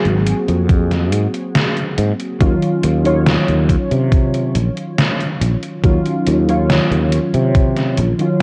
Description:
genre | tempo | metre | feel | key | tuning
vaporwave | 70 BPM | 4/4 | straight | Eb dorian | A4 = 440 Hz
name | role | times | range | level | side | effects
warbly lo-fi synth keys | accompaniment | 0.0-8.4 s | Eb3 to Db5 | -21 LUFS | equal | analog chorus, tape echo
sustaining fretless electric bass | bass | 0.1-8.1 s | Ab1 to C3 | -19 LUFS | equal | none
gated 80s digital drum machine | drums | 0.1-8.4 s | hi-hat, snare drum | -22 LUFS | equal | gated reverb, gated reverb snare, overdrive
electronic kick drum | drums | 0.7-7.7 s | none | -17 LUFS | equal | overdrive
room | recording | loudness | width
light reverb | cassette tape | -16 LUFS | mono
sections
0.0-8.4 A section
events
none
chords
0.0 Ab9; 2.4 Ebm9

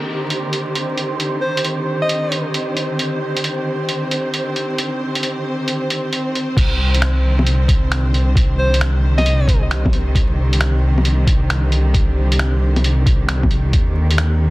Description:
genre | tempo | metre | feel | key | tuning
future garage | 134 BPM | 4/4 | swing 66% on 16ths | C minor | A4 = 440 Hz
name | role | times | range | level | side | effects
warm studio string section | sustained chords | 0.0-14.5 s | D3 to C5 | -22 LUFS | equal | sidechain pumping
wind-like tuned noise texture | texture | 0.0-6.6 s | C5 | -30 LUFS | right 2 dB | built-in reverb
lo-fi sampler-style drum kit | drums | 0.3-14.3 s | bongos, crash cymbal, finger snaps, hi-hat | -22 LUFS | equal | soft clipping on snare
clear alto saxophone | melody | 1.4-2.5, 8.6-9.6 s | C5 to Eb5 | -24 LUFS | equal | tape echo
dark detuned saw bass | bass | 6.6-14.5 s | C2 to Eb2 | -16 LUFS | equal | sidechain pumping
electronic kick drum | drums | 6.6-13.9 s | none | -16 LUFS | equal | none
room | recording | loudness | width
light reverb, digital ambience | dense, heavily limited modern master, vinyl crackle | -15 LUFS | side -19 dB against mid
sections
0.0-6.6 A section; 6.6-14.5 B section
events
none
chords
0.0 Cmadd9; 13.7 Ebmaj7

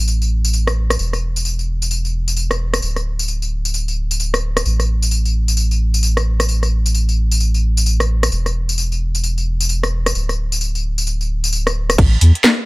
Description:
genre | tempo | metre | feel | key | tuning
UK garage, two-step garage | 131 BPM | 4/4 | swing 62% on 16ths | unclear | A4 = 441 Hz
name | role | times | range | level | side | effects
soft dub sub bass | bass | 0.0-12.3 s | D1 to E2 | -17 LUFS | equal | none
garage drum kit | drums | 0.1-12.6 s | crash cymbal, hi-hat, rim click, snare drum, tambourine | -19 LUFS | left 1 dB | none
electronic kick drum | drums | 12.0-12.1 s | none | -12 LUFS | equal | none
room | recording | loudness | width
little or no reverb | none | -15 LUFS | side -23 dB against mid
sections
0.0-12.0 A section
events
none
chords
none

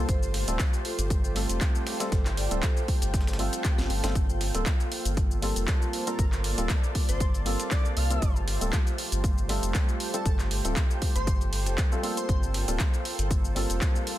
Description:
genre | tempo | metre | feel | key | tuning
deep house | 118 BPM | 4/4 | swing 54% on 16ths | G minor | A4 = 439 Hz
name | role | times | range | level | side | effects
warm analog pad | sustained chords | 0.0-14.2 s | A3 to D5 | -38 LUFS | equal | chorus, sidechain pumping
percussive organ stab | stabs | 0.0-14.2 s | G3 to A4 | -34 LUFS | equal | lush chorus, sidechain pumping, tape echo
round analog bass | bass | 0.0-13.8 s | D1 to C2 | -29 LUFS | equal | tube saturation, sidechain pumping
granular cloud pad | texture | 0.0-14.2 s | Bb3 to A5 | -38 LUFS | right 1 dB | built-in reverb, sidechain pumping
vibraphone with medium hard mallets | melody | 0.1-2.9 s | F4 to D5 | -39 LUFS | right 2 dB | tape echo
breakbeat sampler-style drum kit | drums | 0.1-14.2 s | hi-hat, snare drum | -42 LUFS | equal | none
electronic kick drum | drums | 0.1-13.9 s | none | -26 LUFS | equal | overdrive
house drum kit | drums | 0.1-14.2 s | handclaps, hi-hat, shaker, snare drum | -34 LUFS | equal | overdrive
airy dreamy lead | melody | 6.1-12.3 s | A4 to F5 | -38 LUFS | equal | chorus, tape echo
room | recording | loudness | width
little or no reverb | dense, heavily limited modern master | -24 LUFS | side -14 dB against mid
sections
0.0-14.2 A section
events
drum fill 3.8-4.2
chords
0.1 Fadd9; 4.2 Gm11

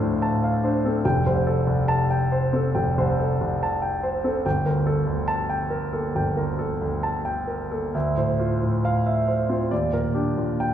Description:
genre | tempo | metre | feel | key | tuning
classical, impressionist solo piano | 65-74 BPM | 4/4 | rubato | G minor | A4 = 441 Hz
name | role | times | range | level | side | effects
warm grand piano | solo | 0.0-10.7 s | F1 to A5 | -21 LUFS | equal | none
room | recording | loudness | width
wet recital hall reverb, RT60 1.3 s | heard from further back in the room | -21 LUFS | side -10 dB against mid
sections
0.0-10.7 A section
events
none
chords
0.0 Dm7; 1.0 Fadd9; 4.5 Gmadd9; 7.9 Dm9; 9.7 Ebmaj7

